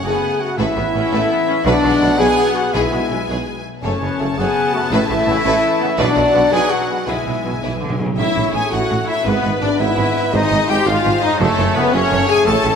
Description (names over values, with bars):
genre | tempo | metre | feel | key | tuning
cinematic, heroic adventure film score | 111 BPM (dotted quarters) | 6/8 | straight | E mixolydian | A4 = 440 Hz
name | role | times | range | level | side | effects
rich symphonic violin section | melody | 0.0-12.8 s | A4 to A5 | -26 LUFS | left 4 dB | none
mellow concert flute | second line | 0.0-12.8 s | A4 to A5 | -25 LUFS | left 1 dB | none
warm clarinet | second line | 0.0-12.8 s | A3 to A4 | -26 LUFS | left 1 dB | none
warm symphonic violin section | second line | 0.0-12.8 s | D4 to A5 | -26 LUFS | left 2 dB | none
warm French horn section | sustained chords | 0.0-12.8 s | A3 to A4 | -20 LUFS | left 4 dB | none
warm trombone section | sustained chords | 0.0-12.8 s | G#2 to B3 | -27 LUFS | right 3 dB | none
concert harp | arpeggios | 0.0-12.8 s | F#2 to C#5 | -31 LUFS | left 7 dB | none
clear trumpet section | stabs | 0.0-12.8 s | B4 to G#5 | -24 LUFS | right 2 dB | none
mellow tuba | bass | 0.0-12.7 s | F#1 to B1 | -25 LUFS | right 3 dB | none
rich studio viola section | accompaniment | 0.1-12.8 s | F#3 to A4 | -26 LUFS | left 2 dB | none
clear symphonic double bass section | bass | 0.1-12.7 s | F#1 to B1 | -25 LUFS | right 3 dB | none
rich symphonic cello section | bass | 0.1-12.7 s | F#2 to E3 | -25 LUFS | right 3 dB | none
timpani | percussion | 2.7-3.2, 6.0-8.1 s | B2 | -28 LUFS | right 1 dB | none
room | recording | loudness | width
wet scoring stage reverb, RT60 1.9 s | none | -14 LUFS | side -7 dB against mid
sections
0.0-8.2 A section; 8.2-12.8 B section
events
timpani fill 7.1-8.2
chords
0.0 F#m; 0.6 Aadd9; 1.7 Bm; 2.7 E/B; 3.8 F#m; 4.9 Aadd9; 6.0 Bm; 7.1 E/B; 8.2 A; 9.3 E/G#; 10.3 G#; 11.4 F#m